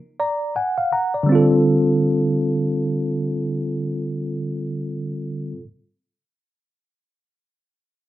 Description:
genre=hip hop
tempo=82 BPM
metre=4/4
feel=swing 58% on 16ths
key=unclear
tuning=A4 = 440 Hz
part: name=bell-like tine electric piano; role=accompaniment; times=0.2-5.6 s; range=D3 to Bb5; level=-19 LUFS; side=equal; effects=medium stereo tremolo, low-pass filter
room=moderate studio reverb, RT60 0.7 s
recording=cassette tape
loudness=-19 LUFS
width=side -14 dB against mid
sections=0.0-1.3 A section; 1.3-4.2 B section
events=tine electric piano fill 0.0-1.3; filter sweep on tine electric piano 0.0-1.3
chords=0.0 N.C.; 1.3 F69/D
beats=0.56 | 1.29 2.02 2.75 3.48

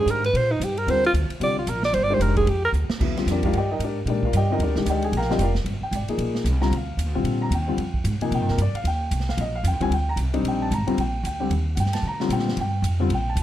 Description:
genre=modal jazz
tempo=226 BPM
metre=4/4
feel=swing 60% on 8ths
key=Eb major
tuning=A4 = 440 Hz
part: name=breathy alto saxophone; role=melody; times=0.0-2.7 s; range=Eb4 to D5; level=-22 LUFS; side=right 2 dB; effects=plate reverb
part: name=dark concert grand piano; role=accompaniment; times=0.0-13.4 s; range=C3 to Bb5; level=-25 LUFS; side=left 2 dB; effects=none
part: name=upright bass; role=bass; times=0.0-13.4 s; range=F1 to D3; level=-24 LUFS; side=equal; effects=none
part: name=swinging big-band drum kit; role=drums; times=0.1-13.4 s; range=crash cymbal, hi-hat, kick drum, ride cymbal, snare drum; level=-33 LUFS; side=right 2 dB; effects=none
room=light reverb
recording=dark, warm production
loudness=-21 LUFS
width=side -12 dB against mid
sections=0.0-3.0 A section; 3.0-13.4 A section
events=alto saxophone solo 0.0-3.0; drum fill 2.7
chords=0.0 Ebmaj9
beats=0.08 0.34 0.61 | 0.87 1.14 1.41 1.67 | 1.94 2.20 2.47 2.74 | 3.00 3.27 3.53 3.80 | 4.06 4.33 4.60 4.86 | 5.13 5.39 5.66 5.92 | 6.19 6.46 6.72 6.99 | 7.25 7.52 7.79 8.05 | 8.32 8.58 8.85 9.12 | 9.38 9.65 9.91 10.18 | 10.44 10.71 10.98 11.24 | 11.51 11.77 12.04 12.30 | 12.57 12.84 13.10 13.37

